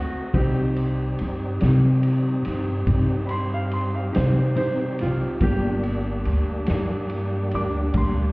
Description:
slow blues; 47 BPM (dotted quarters); 12/8; straight; A4 = 438 Hz
bright upright piano; accompaniment; 0.0-8.3 s; G3 to D6; -29 LUFS; right 1 dB
bright tonewheel organ; sustained chords; 0.0-8.3 s; G3 to Eb5; -30 LUFS; equal; slow rotary speaker, chorus vibrato
upright bass; bass; 0.0-8.3 s; G1 to C3; -23 LUFS; equal
mellow electric guitar; accompaniment; 0.3-8.2 s; C3 to G4; -27 LUFS; left 1 dB; tremolo
raw garage drum kit; drums; 0.3-8.1 s; kick drum, ride cymbal, snare drum; -29 LUFS; equal
light reverb; heard muffled through a wall, stone room reverb, EQ; -20 LUFS; side -24 dB against mid
0.0-8.3 A section
upright piano solo 0.0-8.3
0.3 Cm; 5.4 Gm
| 0.35 1.61 2.88 4.15 | 5.42 6.69 7.96

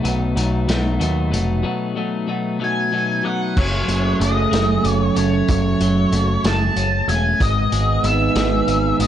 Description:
indie rock; 62 BPM (dotted quarters); 6/8; straight; A4 = 440 Hz
electric guitar through a small old amp; riff; 0.0-9.1 s; F#2 to G#4; -23 LUFS; right 6 dB; lush chorus
twelve-string electric guitar; riff; 0.0-9.1 s; F#2 to G#4; -23 LUFS; left 4 dB
growling picked electric bass; bass; 0.0-9.1 s; E1 to D#2; -20 LUFS; equal; overdrive
vintage drum kit; drums; 0.0-9.1 s; crash cymbal, hi-hat, kick drum, snare drum; -23 LUFS; equal
octave-fuzz lead guitar; melody; 2.6-9.1 s; C#5 to A5; -22 LUFS; left 1 dB; distortion
light reverb; dark, warm production, nothing above 10.5 kHz; -16 LUFS; side -10 dB against mid
0.0-3.6 A section; 3.6-9.1 B section
break 1.6-3.6
0.0 B7; 3.6 F#madd9; 7.4 G#m
0.68 | 1.64 2.60 | 3.57 4.53 | 5.49 6.44 | 7.40 8.36

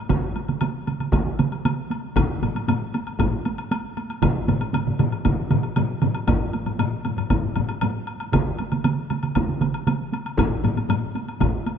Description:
japanese traditional, taiko drum ensemble; 117 BPM; 4/4; straight
solo taiko drums; percussion; 0.1-10.0 s; -25 LUFS; right 6 dB
taiko ensemble; percussion; 0.1-11.8 s; -28 LUFS; right 2 dB
taiko ensemble; percussion; 0.1-11.5 s; -26 LUFS; left 1 dB
woodblock; percussion; 0.1-11.8 s; -32 LUFS; left 4 dB
taiko ensemble; percussion; 2.2-11.5 s; -26 LUFS; left 4 dB
moderate huge ambient reverb, RT60 4.1 s; -21 LUFS; side -8 dB against mid
0.0-11.8 A section
| 0.10 0.62 1.13 1.65 | 2.16 2.68 3.19 3.71 | 4.22 4.74 5.25 5.77 | 6.28 6.79 7.31 7.82 | 8.33 8.85 9.36 9.87 | 10.38 10.89 11.40

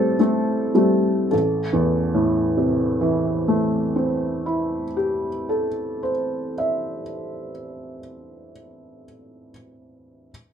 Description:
neoclassical minimalist piano; 36 BPM (dotted quarters); 6/8; rubato; A minor; A4 = 435 Hz
felt-muted upright piano; solo; 0.0-10.3 s; A1 to E5; -20 LUFS; equal
wet studio reverb, RT60 0.5 s; minimal, uncompressed stereo recording; -19 LUFS; side -8 dB against mid
0.0-1.3 A section; 1.3-8.0 B section
slowing down 0.0-1.3
0.0 Am7
| 1.31 3.01 | 4.69 6.36

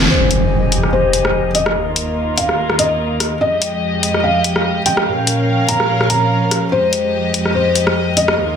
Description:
heavy wobble dubstep; 145 BPM; 4/4; swing 55% on 16ths, half-time; F minor; A4 = 440 Hz
warm chamber string section; sustained chords; 0.0-8.6 s; Eb2 to F5; -18 LUFS; equal; low-pass filter
felt-muted upright piano; melody; 0.1-8.6 s; C5 to Bb5; -18 LUFS; left 1 dB; dub echo
impact; sound effects; 0.1-1.8 s; -19 LUFS; equal
dubstep drum kit; drums; 0.3-8.4 s; hi-hat, rim click; -18 LUFS; equal; soft clipping on snare
wet digital room reverb, RT60 1.2 s, digital ambience; dense, heavily limited modern master; -13 LUFS; side -7 dB against mid
0.1-8.6 A section
impact 0.1-1.8; filter sweep on string section 0.1-8.6
0.1 Fm7; 1.8 Ebsus2; 3.4 Fm7; 5.1 Bbm; 6.7 Fm7
| 0.10 0.51 0.93 1.34 | 1.75 2.17 2.58 3.00 | 3.41 3.82 4.24 4.65 | 5.07 5.48 5.89 6.31 | 6.72 7.13 7.55 7.96 | 8.38

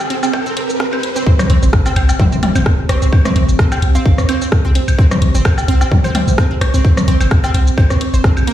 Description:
minimal techno; 129 BPM; 4/4; swing 55% on 16ths; A4 = 440 Hz
garage drum kit; drums; 0.0-8.5 s; hi-hat, rim click, shaker; -23 LUFS; equal; high-pass filter on perc, studio reverb, high-pass filter on hats, high-pass filter on snare
organic electronic drum kit; percussion; 0.0-8.5 s; rim click, toms, woodblock; -19 LUFS; left 2 dB; overdrive, studio reverb, tape echo
riser and sub drop; sound effects; 0.0-3.1 s; -21 LUFS; equal
warbly tape-like pad; texture; 0.0-8.5 s; C4 to C5; -24 LUFS; right 4 dB; chorus, built-in reverb, phaser, sidechain pumping
resonant blip pluck; riff; 0.1-8.5 s; Bb3 to C5; -24 LUFS; right 2 dB; chorus, sidechain pumping, ping-pong delay
electronic kick drum; drums; 0.3-8.3 s; -12 LUFS; equal; high-pass filter on kick, studio reverb
punchy sub bass; bass; 1.5-8.4 s; G1 to Eb2; -13 LUFS; equal; sidechain pumping
soft synth bell; melody; 4.0-4.1 s; F5; -31 LUFS; right 3 dB; chorus, phaser, tape echo
light reverb; played on a big sound system in a bare room, large studio reverb; -11 LUFS; side -12 dB against mid
0.0-1.3 A section; 1.3-8.5 B section
build-up 0.0-1.3; riser 0.0-1.3; drop 1.3-8.5; impact 1.3-3.1
0.0 C5
0.34 0.80 | 1.26 1.73 2.19 2.66 | 3.12 3.59 4.06 4.52 | 4.99 5.45 5.92 6.38 | 6.85 7.31 7.78 8.24

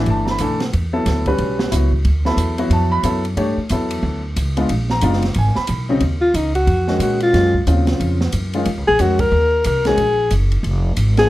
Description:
modal jazz; 182 BPM; 4/4; swing 62% on 8ths; Eb dorian from 6.0 s; A4 = 442 Hz
warm grand piano; accompaniment; 0.0-11.3 s; C#3 to B5; -20 LUFS; left 1 dB
upright bass; bass; 0.0-11.3 s; F1 to Bb2; -18 LUFS; equal
open jazz drum kit; drums; 0.1-11.2 s; hi-hat, kick drum, ride cymbal, snare drum; -27 LUFS; right 2 dB
warm alto saxophone; melody; 6.2-11.3 s; Eb4 to Bb4; -16 LUFS; left 1 dB; plate reverb
light reverb; dark, warm production; -15 LUFS; side -16 dB against mid
0.0-6.0 A section; 6.0-11.3 A section
alto saxophone solo 6.0-11.3
0.0 Em7; 0.7 G; 4.7 A#7b9; 6.0 Ebm9
0.08 0.41 | 0.74 1.07 1.40 1.73 | 2.06 2.39 2.72 3.05 | 3.38 3.71 4.04 4.37 | 4.70 5.03 5.36 5.69 | 6.02 6.35 6.68 7.01 | 7.34 7.67 8.00 8.33 | 8.66 8.99 9.32 9.65 | 9.98 10.31 10.64 10.98

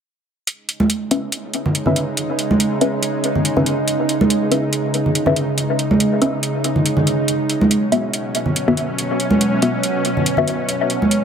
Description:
deep dubstep; 141 BPM; 4/4; swing 55% on 16ths, half-time; C# minor; A4 = 440 Hz
bowed-like drone; sustained chords; 1.3-11.2 s; B2 to D#4; -20 LUFS; right 1 dB; built-in reverb
electronic hi-hat; drums; 0.5-11.2 s; -22 LUFS; right 1 dB
congas; percussion; 0.8-11.1 s; -20 LUFS; right 2 dB; dub echo
filtered dub chord stab; stabs; 1.1-10.6 s; B3 to E5; -21 LUFS; left 2 dB; phaser, dub echo
moderate spring reverb, RT60 1.6 s, digital ambience; echo-heavy mix; -16 LUFS; side -7 dB against mid
0.5-11.2 A section
filter sweep on synth stab 0.5-11.2
0.5 C#m7; 7.3 Bsus4
| 0.47 0.90 1.32 1.75 | 2.17 2.60 3.03 3.45 | 3.88 4.30 4.73 5.15 | 5.58 6.00 6.43 6.86 | 7.28 7.71 8.13 8.56 | 8.98 9.41 9.84 10.26 | 10.69 11.11

